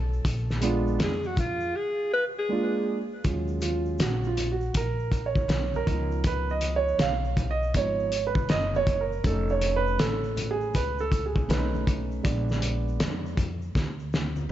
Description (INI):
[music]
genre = hip hop, jazz-hop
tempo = 80 BPM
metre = 4/4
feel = swing 65% on 16ths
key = Eb minor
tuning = A4 = 440 Hz
[part]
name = breathy alto saxophone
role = melody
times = 0.0-3.1 s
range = F4 to Cb5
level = -29 LUFS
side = left 1 dB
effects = analog delay
[part]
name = upright bass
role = bass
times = 0.0-14.5 s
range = F1 to F2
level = -30 LUFS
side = equal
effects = none
[part]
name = tube shaker and congas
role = percussion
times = 0.1-14.5 s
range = none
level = -41 LUFS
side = left 5 dB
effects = none
[part]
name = cloth-damped thuddy drum kit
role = drums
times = 0.2-14.4 s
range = hi-hat, kick drum, snare drum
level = -28 LUFS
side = equal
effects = vintage 12-bit sampler grit
[part]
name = dark grand piano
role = accompaniment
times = 0.6-14.5 s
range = F3 to F5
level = -28 LUFS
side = right 4 dB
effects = none
[sound]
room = light reverb, studio reverb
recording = dark, warm production, nothing above 7.7 kHz, faint mains hum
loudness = -24 LUFS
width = side -12 dB against mid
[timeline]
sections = 0.0-3.2 A section; 3.2-14.5 A section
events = alto saxophone solo 0.0-3.2; silent gap 1.7-3.2; grand piano solo 3.2-14.5; drum fill 13.7-14.5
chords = 0.2 Bb7b9; 2.5 Bb7; 3.2 Ebm11; 5.9 Db9; 9.2 Faug7; 11.5 B9; 12.2 Bb7b9